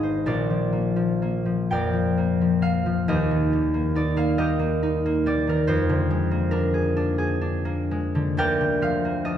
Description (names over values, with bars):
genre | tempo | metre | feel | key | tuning
classical, solo harp piece | 39-48 BPM (dotted quarters) | 6/8 | rubato | unclear | A4 = 440 Hz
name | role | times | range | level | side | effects
concert harp | solo | 0.0-9.4 s | Ab1 to G5 | -21 LUFS | equal | none
room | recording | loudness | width
wet recital hall reverb, RT60 1.7 s | heard from further back in the room | -21 LUFS | side -10 dB against mid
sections
0.0-9.4 A section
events
none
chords
0.2 Bb; 3.1 Eb; 5.7 Bb7/F; 8.4 Bb/D